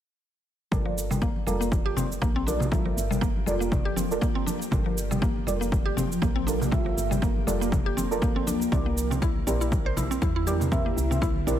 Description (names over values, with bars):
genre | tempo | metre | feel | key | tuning
afro house | 120 BPM | 4/4 | swing 56% on 16ths | G dorian | A4 = 443 Hz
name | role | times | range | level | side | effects
ethereal airy pad | sustained chords | 2.1-11.6 s | D3 to G4 | -34 LUFS | left 1 dB | ensemble chorus, built-in reverb, phaser, sidechain pumping
mallet-like synth pluck | arpeggios | 0.7-11.6 s | F3 to C5 | -31 LUFS | left 1 dB | chorus, sidechain pumping, ping-pong delay
deep mellow chord stab | stabs | 0.7-11.6 s | E4 to E5 | -32 LUFS | right 3 dB | chorus, phaser, sidechain pumping, ping-pong delay
woody FM bass | bass | 0.7-11.6 s | F1 to E2 | -31 LUFS | equal | sidechain pumping
cabasa | drums | 0.7-11.6 s | none | -37 LUFS | right 3 dB | overdrive
electronic kick drum | drums | 0.7-11.3 s | none | -27 LUFS | equal | overdrive
congas | percussion | 0.7-11.4 s | none | -33 LUFS | right 1 dB | none
room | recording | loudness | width
light reverb | none | -23 LUFS | side -10 dB against mid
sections
0.7-11.6 A section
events
none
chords
0.7 Gm9; 8.7 C9